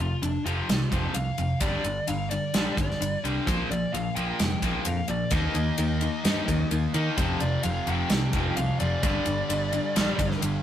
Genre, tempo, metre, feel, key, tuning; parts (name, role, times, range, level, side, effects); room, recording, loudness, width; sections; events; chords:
hard rock; 129 BPM; 4/4; straight; G minor; A4 = 441 Hz
dark smooth lead guitar; melody; 0.0-10.4 s; D4 to G5; -32 LUFS; left 1 dB; overdrive
cranked stack guitar; riff; 0.0-10.6 s; F2 to Eb4; -32 LUFS; left 6 dB; overdrive
overdriven electric guitar; riff; 0.0-10.6 s; F2 to Eb4; -33 LUFS; right 5 dB
modern bright picked electric bass; bass; 0.0-10.6 s; F1 to Eb3; -29 LUFS; equal
gated 80s drum kit; drums; 0.2-10.5 s; kick drum, ride cymbal, snare drum; -30 LUFS; right 1 dB
distorted electric guitar; riff; 5.3-10.6 s; F2 to Eb4; -32 LUFS; equal; overdrive
moderate studio reverb, RT60 0.7 s; rough rehearsal-room recording; -24 LUFS; side -10 dB against mid
0.0-10.6 A section
lead electric guitar solo 0.0-10.6
0.0 F5; 1.6 G5; 3.5 Bb5; 5.3 Eb5; 7.2 Fsus2; 9.0 G5